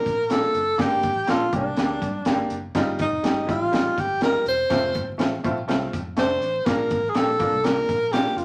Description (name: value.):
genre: uptempo 1960s-style soul.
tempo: 123 BPM.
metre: 4/4.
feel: straight.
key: Bb major.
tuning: A4 = 439 Hz.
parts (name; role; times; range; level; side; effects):
breathy tenor saxophone; melody; 0.0-8.4 s; D4 to C5; -25 LUFS; equal; none.
bright upright piano; accompaniment; 0.0-8.4 s; G3 to A4; -30 LUFS; equal; none.
vintage muted fingered electric bass; bass; 0.1-8.4 s; E1 to G2; -38 LUFS; equal; none.
crunchy breakbeat drum kit; drums; 0.1-8.4 s; hi-hat, kick drum, snare drum; -28 LUFS; equal; none.
room: moderate studio reverb, RT60 0.5 s.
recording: vinyl crackle.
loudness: -23 LUFS.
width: mono.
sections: 0.0-8.4 A section.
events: none.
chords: 0.0 Bb; 0.8 Gm; 2.7 Ebadd9; 4.7 F; 6.7 Bb.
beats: 0.30 | 0.79 1.28 1.77 2.26 | 2.75 3.24 3.73 4.21 | 4.70 5.19 5.68 6.17 | 6.66 7.15 7.64 8.13.